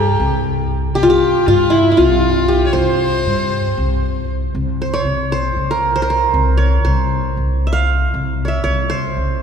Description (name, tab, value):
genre	turkish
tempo	234 BPM (eighths)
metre	7/8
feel	straight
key	C makam hicaz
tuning	A4 = 444 Hz
part	qanun	melody	0.0-9.4 s	E4 to F5	-16 LUFS	equal	none
part	rich violin	second line	0.0-4.3 s	E4 to Db5	-23 LUFS	left 3 dB	none
part	upright bass	bass	0.0-9.4 s	C2 to G2	-17 LUFS	equal	none
room	wet church reverb, RT60 3.6 s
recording	recorded in a church or concert hall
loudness	-14 LUFS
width	side -7 dB against mid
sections	0.0-4.5 A section; 4.5-9.4 B section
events	none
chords	none